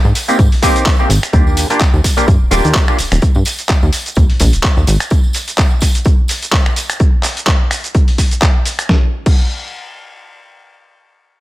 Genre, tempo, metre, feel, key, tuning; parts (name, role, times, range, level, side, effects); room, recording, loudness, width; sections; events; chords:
filtered disco house; 127 BPM; 4/4; swing 56% on 16ths; Eb major; A4 = 440 Hz
plucky analog bass; bass; 0.0-5.0 s; Eb1 to Ab2; -13 LUFS; equal; sidechain pumping
tambourine; percussion; 0.0-7.0 s; -28 LUFS; right 3 dB; sidechain pumping on perc
dusty soul sampler-style drum kit; drums; 0.2-9.4 s; crash cymbal, finger snaps, handclaps, hi-hat, shaker, snare drum; -18 LUFS; equal; overdrive, sidechain pumping on hats, sidechain pumping on perc, sidechain pumping on cymbals
overdriven clav; accompaniment; 0.3-3.0 s; Bb3 to G4; -16 LUFS; equal; phaser, sidechain pumping
electronic kick drum; drums; 0.4-9.4 s; -12 LUFS; equal; overdrive
little or no reverb; -11 LUFS; side -17 dB against mid
0.0-8.9 A section; 8.9-11.4 B section
drop 0.0-8.9
0.0 Abmaj7; 1.3 Ebmaj7; 4.9 N.C.